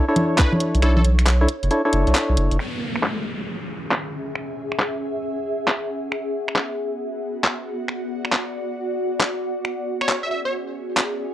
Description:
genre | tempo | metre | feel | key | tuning
UK garage, two-step garage | 136 BPM | 4/4 | swing 65% on 16ths | C# phrygian | A4 = 438 Hz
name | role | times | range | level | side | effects
warm analog pad | sustained chords | 0.0-11.3 s | C#5 to F#5 | -37 LUFS | right 2 dB | chorus, sidechain pumping
percussive organ stab | stabs | 0.0-2.6 s | D4 to C#5 | -22 LUFS | left 1 dB | chorus, tape echo
garage drum kit | drums | 0.2-11.1 s | congas, finger snaps, handclaps, hi-hat | -22 LUFS | equal | overdrive, low-pass filter on snare, low-pass filter on hats, low-pass filter on perc
plucky unison lead | melody | 0.4-1.0, 10.0-10.5 s | A4 to E5 | -27 LUFS | equal | phaser, tape echo
electronic kick drum | drums | 0.4-0.5 s | none | -17 LUFS | equal | none
saturated sub bass | bass | 0.7-2.6 s | F#1 to B1 | -18 LUFS | equal | none
downlifter | sound effects | 2.6-6.1 s | none | -30 LUFS | equal | none
ethereal airy pad | texture | 3.5-11.3 s | B3 to E5 | -27 LUFS | equal | ensemble chorus, built-in reverb, sidechain pumping
room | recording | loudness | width
light reverb, digital ambience | dry, gritty hardware recording, cassette tape | -20 LUFS | side -12 dB against mid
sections
0.0-2.6 A section; 2.6-11.3 B section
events
kick drops out 0.8-2.6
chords
0.0 Bm11; 2.6 C#madd11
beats
0.39 | 0.83 1.27 1.71 2.15 | 2.59 3.03 3.47 3.91 | 4.36 4.80 5.24 5.68 | 6.12 6.56 7.00 7.44 | 7.88 8.33 8.77 9.21 | 9.65 10.09 10.53 10.97

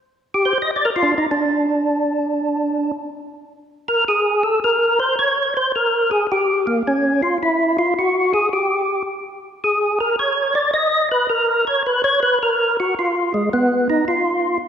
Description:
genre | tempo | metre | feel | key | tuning
jazz | 108 BPM | 4/4 | swing 69% on 8ths | unclear | A4 = 440 Hz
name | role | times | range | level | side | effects
percussive tonewheel organ | solo | 0.3-14.6 s | Ab3 to Eb5 | -16 LUFS | equal | slow rotary speaker, overdrive, chorus vibrato
room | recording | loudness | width
wet scoring stage reverb, RT60 1.9 s | recorded in a church or concert hall | -16 LUFS | side -8 dB against mid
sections
0.0-5.2 A section; 5.2-14.7 A section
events
tonewheel organ solo 0.0-14.7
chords
none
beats
0.16 | 0.72 1.27 1.82 2.38 | 2.93 3.49 4.04 4.60 | 5.15 5.71 6.26 6.82 | 7.37 7.93 8.48 9.04 | 9.59 10.15 10.71 11.26 | 11.82 12.37 12.93 13.48 | 14.04

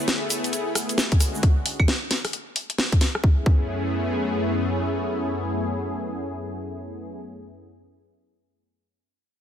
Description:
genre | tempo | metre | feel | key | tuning
UK garage, two-step garage | 133 BPM | 4/4 | swing 62% on 16ths | F# minor | A4 = 440 Hz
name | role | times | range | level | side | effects
warm analog pad | sustained chords | 0.0-7.2 s | F#2 to G#4 | -26 LUFS | left 1 dB | chorus, sidechain pumping
egg shaker | percussion | 0.0-1.4 s | none | -32 LUFS | right 4 dB | none
garage drum kit | drums | 0.1-3.2 s | claves, hi-hat, rim click, snare drum | -24 LUFS | equal | studio ambience
electronic kick drum | drums | 1.1-3.6 s | none | -18 LUFS | equal | studio ambience
room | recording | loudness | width
little or no reverb | dense, heavily limited modern master | -21 LUFS | side -9 dB against mid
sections
0.0-3.2 A section; 3.2-6.8 B section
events
drop 0.0-3.2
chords
0.0 F#m11 (rootless); 1.2 Dmaj9#11; 3.2 F#m11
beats
0.08 0.53 0.98 | 1.43 1.88 2.33 2.79 | 3.24 3.69 4.14 4.59 | 5.04 5.49 5.94 6.39

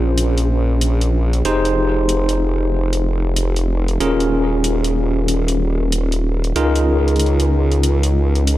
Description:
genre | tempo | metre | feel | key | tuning
glitch hop | 94 BPM | 4/4 | swing 63% on 16ths | unclear | A4 = 440 Hz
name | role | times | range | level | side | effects
bell-like tine electric piano | stabs | 0.0-8.6 s | Db4 to C5 | -20 LUFS | equal | medium stereo tremolo, vintage 12-bit sampler grit, tape echo
formant-sweep wobble bass | bass | 0.0-8.6 s | Eb1 to Db2 | -17 LUFS | equal | chorus, tube saturation
electronic hi-hat | drums | 0.2-8.6 s | none | -26 LUFS | equal | overdrive
room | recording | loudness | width
light reverb, digital ambience | dark, warm production | -15 LUFS | side -15 dB against mid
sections
0.0-8.6 A section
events
none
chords
0.0 Bbm9; 1.5 Fm9; 4.0 Eb9sus4; 6.6 Db6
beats
0.17 0.81 | 1.45 2.09 2.73 3.37 | 4.00 4.64 5.28 5.92 | 6.56 7.20 7.83 8.47

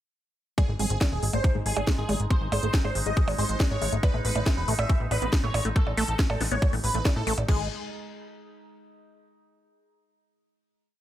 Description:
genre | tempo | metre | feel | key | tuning
psychedelic trance | 139 BPM | 4/4 | straight | unclear | A4 = 443 Hz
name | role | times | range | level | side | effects
dense compressed supersaw | melody | 0.6-7.6 s | Ab4 to E5 | -33 LUFS | right 1 dB | phaser, vintage 12-bit sampler grit, sidechain pumping, tape echo
overtone-sweeping drone | sustained chords | 0.9-7.5 s | Ab3 to Eb4 | -38 LUFS | equal | chorus, built-in reverb, sidechain pumping
liquid acid bass | riff | 0.6-7.7 s | Ab3 to Db4 | -32 LUFS | moving between left 7 dB and right 4 dB | phaser, auto-pan, sidechain pumping, digital delay
electronic kick drum | drums | 0.6-7.6 s | none | -25 LUFS | equal | none
techno drum kit | drums | 0.6-7.6 s | crash cymbal, hi-hat, percussion blips, snare drum | -31 LUFS | right 1 dB | overdrive
plucky analog bass | bass | 0.7-7.7 s | Eb1 to A2 | -28 LUFS | equal | none
resonant blip pluck | second line | 0.8-3.0 s | C4 to Ab4 | -43 LUFS | right 2 dB | none
room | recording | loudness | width
little or no reverb | none | -23 LUFS | side -13 dB against mid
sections
0.6-7.5 groove; 7.5-9.2 final chord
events
filter sweep on acid bass 0.6-7.5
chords
0.6 Ab5; 4.0 A5; 7.5 N.C.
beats
| 0.58 1.01 1.44 1.87 | 2.31 2.74 3.17 3.60 | 4.03 4.46 4.89 5.33 | 5.76 6.19 6.62 7.05 | 7.49

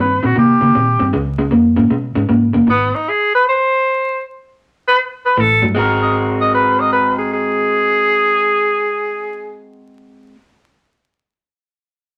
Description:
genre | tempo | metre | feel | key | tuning
electric blues shuffle | 156 BPM | 4/4 | swing 64% on 8ths | Ab mixolydian | A4 = 442 Hz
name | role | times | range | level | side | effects
warm tenor saxophone | melody | 0.0-9.6 s | Cb4 to Eb5 | -16 LUFS | equal | none
electric guitar through a small old amp | riff | 0.0-2.9, 5.4-10.4 s | Ab2 to Bb4 | -18 LUFS | equal | none
vintage muted fingered electric bass | bass | 0.0-2.9, 5.4-10.3 s | Gb1 to Db3 | -23 LUFS | equal | none
room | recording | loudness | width
moderate studio reverb, RT60 0.7 s | vinyl crackle | -15 LUFS | mono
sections
0.0-5.8 A section; 5.8-8.9 B section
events
stop 2.7-5.4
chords
0.0 Eb; 1.1 Db7; 2.7 Ab; 5.4 A5; 5.8 Ab9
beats
0.37 0.75 | 1.14 1.52 1.91 2.30 | 2.68 3.07 3.45 3.84 | 4.22 4.61 4.99 5.38 | 5.76 6.15 6.54 6.92 | 7.31 7.70 8.08 8.47

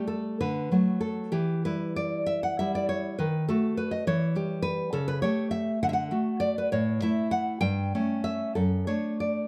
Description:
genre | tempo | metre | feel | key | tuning
romantic piece for solo classical guitar | 60-70 BPM (dotted quarters) | 6/8 | rubato | D major | A4 = 441 Hz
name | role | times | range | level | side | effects
nylon-string guitar | solo | 0.0-9.5 s | F#2 to G5 | -28 LUFS | equal | none
room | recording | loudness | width
light reverb | close, detailed microphones | -28 LUFS | mono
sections
0.0-9.5 A section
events
none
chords
0.4 D; 1.3 Em; 3.2 D#dim; 4.1 Em; 4.9 A7/C#; 5.8 D; 6.7 A5; 7.6 A7/G; 8.6 D/F#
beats
0.41 | 1.33 2.27 | 3.18 4.06 | 4.93 5.81 | 6.73 7.62 | 8.56

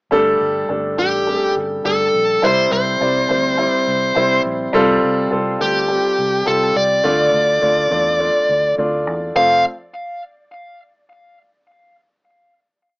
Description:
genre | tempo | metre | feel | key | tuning
piano-driven pop | 104 BPM | 4/4 | swing 56% on 16ths | F major | A4 = 440 Hz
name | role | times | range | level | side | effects
clear baby grand piano | accompaniment | 0.1-9.6 s | F2 to D5 | -18 LUFS | equal | none
vintage muted fingered electric bass | bass | 0.1-9.6 s | F1 to E2 | -28 LUFS | equal | none
fuzz lead guitar | melody | 1.0-9.6 s | G4 to F5 | -16 LUFS | equal | distortion
room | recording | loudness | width
moderate small room reverb, RT60 0.5 s | rough home demo mix, small speaker sound | -14 LUFS | side -32 dB against mid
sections
0.1-9.4 verse; 9.4-11.7 final chord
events
none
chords
0.1 Gsus2; 2.4 C; 4.7 Fadd9/C; 7.1 Dm; 9.4 F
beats
| 0.12 0.69 1.27 1.85 | 2.43 3.01 3.58 4.16 | 4.74 5.32 5.90 6.47 | 7.05 7.63 8.21 8.79 | 9.36

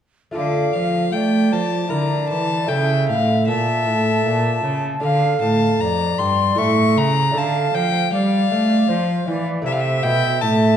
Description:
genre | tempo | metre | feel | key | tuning
classical, baroque-style sonata movement with continuo | 77 BPM | 3/4 | straight | D minor | A4 = 440 Hz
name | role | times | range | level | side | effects
lute | accompaniment | 0.3-10.8 s | F2 to Bb4 | -24 LUFS | equal | none
rich cello | bass | 0.3-10.8 s | F2 to A3 | -20 LUFS | right 1 dB | none
rich violin | melody | 0.4-10.8 s | D5 to C#6 | -22 LUFS | left 6 dB | none
wooden flute | second line | 0.4-10.8 s | C5 to A5 | -24 LUFS | right 4 dB | none
room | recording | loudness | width
wet recital hall reverb, RT60 1.6 s | dark, warm production | -16 LUFS | side -9 dB against mid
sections
0.4-10.8 A section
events
none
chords
0.4 Dm; 1.9 Bbmaj7#11/D; 2.7 A; 5.0 Dm; 6.6 A; 7.4 Dm; 9.7 Am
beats
| 0.35 1.14 1.92 | 2.70 3.48 4.26 | 5.04 5.82 6.59 | 7.36 8.13 8.90 | 9.66 10.42

